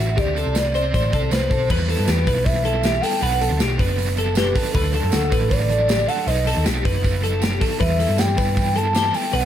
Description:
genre	jangly indie pop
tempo	157 BPM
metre	4/4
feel	straight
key	E minor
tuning	A4 = 442 Hz
part	hollow clarinet-like synth lead	melody	0.0-9.4 s	A4 to A5	-23 LUFS	equal	chorus
part	crunchy overdriven guitar	accompaniment	0.0-9.4 s	B2 to C5	-27 LUFS	right 4 dB	tremolo
part	twelve-string electric guitar	arpeggios	0.0-9.4 s	F#4 to C5	-26 LUFS	left 2 dB	none
part	hollow-body short-scale picked electric bass	bass	0.0-9.4 s	F#1 to G2	-22 LUFS	equal	none
part	modern studio drum kit	drums	0.0-9.4 s	crash cymbal, hi-hat, kick drum, snare drum	-24 LUFS	equal	none
part	tambourine	percussion	0.2-9.4 s	none	-38 LUFS	right 8 dB	none
room	moderate studio reverb, RT60 0.6 s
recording	none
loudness	-17 LUFS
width	side -10 dB against mid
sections	0.0-1.7 A section; 1.7-9.4 B section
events	none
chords	0.2 D7sus4; 1.7 Em; 3.2 Bm; 4.8 D; 6.3 B; 7.8 Em

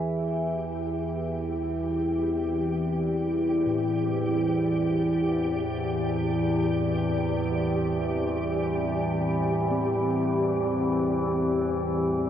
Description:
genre	dark ambient drone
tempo	free time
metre	none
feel	none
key	unclear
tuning	A4 = 440 Hz
part	deep dark ambient pad	sustained chords	0.0-12.3 s	E3 to E5	-29 LUFS	left 1 dB	chorus, built-in reverb
part	overtone-sweeping drone	drone	0.0-12.3 s	E2 to E3	-27 LUFS	equal	chorus, built-in reverb
part	flickering grainy texture	texture	0.3-12.3 s	G4	-35 LUFS	right 1 dB	built-in reverb
part	quartz singing bowl	arpeggios	3.7-12.3 s	A2 to C4	-33 LUFS	left 1 dB	tape echo
room	wet cathedral reverb, RT60 6.2 s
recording	dark, warm production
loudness	-24 LUFS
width	side -10 dB against mid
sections	0.0-12.3 A section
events	none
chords	0.0 C/E

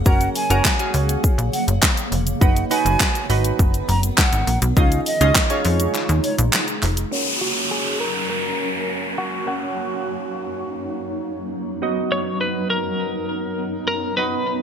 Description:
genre	dance-pop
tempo	102 BPM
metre	4/4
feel	straight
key	F# major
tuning	A4 = 444 Hz
part	granular cloud pad	sustained chords	0.0-14.6 s	F#2 to E#4	-28 LUFS	equal	built-in reverb, sidechain pumping, low-pass filter
part	plucky analog bass	bass	0.0-7.1 s	E#1 to E#2	-20 LUFS	equal	sidechain pumping
part	breathy mellow silver concert flute	melody	0.1-6.4 s	C#5 to A#5	-25 LUFS	right 2 dB	sidechain pumping, digital delay
part	glassy digital keys	accompaniment	0.1-14.6 s	F#3 to D#5	-26 LUFS	right 3 dB	chorus, sidechain pumping, low-pass filter
part	pop drum kit	drums	0.1-7.1 s	handclaps, hi-hat, kick drum, shaker, snare drum	-19 LUFS	equal	gated reverb
part	group handclap	percussion	0.6-6.7 s	none	-28 LUFS	left 4 dB	none
part	downlifter and riser	sound effects	7.1-14.6 s	none	-25 LUFS	equal	none
part	twelve-string electric guitar	melody	7.4-14.6 s	F#4 to C#5	-25 LUFS	left 1 dB	tremolo, low-pass filter, digital delay
room	light reverb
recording	bright 1980s-style digital production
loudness	-18 LUFS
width	side -8 dB against mid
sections	0.0-7.1 A section; 7.1-14.6 B section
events	drop 0.0-7.1; break 5.9-7.1; filter sweep 7.1-14.6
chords	0.0 F#; 2.4 B/F#; 4.8 C#add9; 7.1 F#; 11.8 B/F#

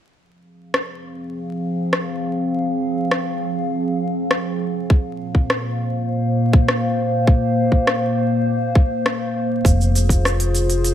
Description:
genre	folktronica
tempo	101 BPM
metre	4/4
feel	straight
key	F minor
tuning	A4 = 440 Hz
part	warbly tape-like pad	sustained chords	1.0-10.9 s	Bb2 to F5	-20 LUFS	equal	chorus, built-in reverb
part	organic electronic drum kit	drums	0.7-10.9 s	cabasa, hi-hat, rim click	-22 LUFS	equal	overdrive
part	electronic kick drum	drums	4.9-10.2 s	none	-14 LUFS	equal	overdrive
part	upright bass	bass	9.7-10.9 s	F1	-17 LUFS	equal	tube saturation
room	light reverb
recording	vinyl crackle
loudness	-17 LUFS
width	side -10 dB against mid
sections	0.1-9.7 A section; 9.7-10.9 B section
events	filter sweep on ambient pad 0.1-9.7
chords	0.1 Fm; 4.9 Bbsus2; 9.7 Fm

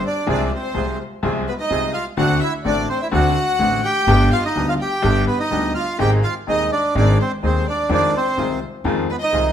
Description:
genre	tango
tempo	126 BPM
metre	4/4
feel	rubato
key	unclear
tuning	A4 = 439 Hz
part	bandoneon	melody	0.0-9.5 s	B3 to G5	-21 LUFS	right 2 dB	none
part	clear studio violin section	second line	0.0-9.5 s	B4 to G5	-26 LUFS	left 2 dB	none
part	bright upright piano	accompaniment	0.3-9.5 s	Eb1 to Ab4	-22 LUFS	left 3 dB	none
part	bandoneon	stabs	0.3-9.5 s	B3 to Ab4	-30 LUFS	right 4 dB	none
part	upright bass	bass	0.3-9.5 s	G1 to F2	-21 LUFS	right 1 dB	none
room	moderate large studio reverb, RT60 1.2 s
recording	minimal, uncompressed stereo recording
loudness	-17 LUFS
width	side -9 dB against mid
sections	0.0-9.5 A section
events	none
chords	0.3 Fm/C; 2.2 D7; 4.1 G; 6.0 Ab; 7.9 Fm7

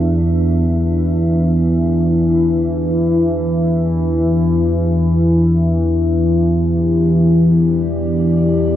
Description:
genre	dark ambient drone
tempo	free time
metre	none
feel	none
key	E minor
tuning	A4 = 444 Hz
part	dark analog pad	sustained chords	0.0-8.8 s	E3 to E5	-23 LUFS	left 1 dB	chorus
part	analog drone	drone	0.0-8.8 s	E2 to E3	-13 LUFS	equal	chorus
room	moderate huge ambient reverb, RT60 8.3 s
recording	worn, warbling old tape, cassette tape, warbly pitch drift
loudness	-13 LUFS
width	side -11 dB against mid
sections	0.0-8.8 A section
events	none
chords	0.0 Em7; 5.6 G/E

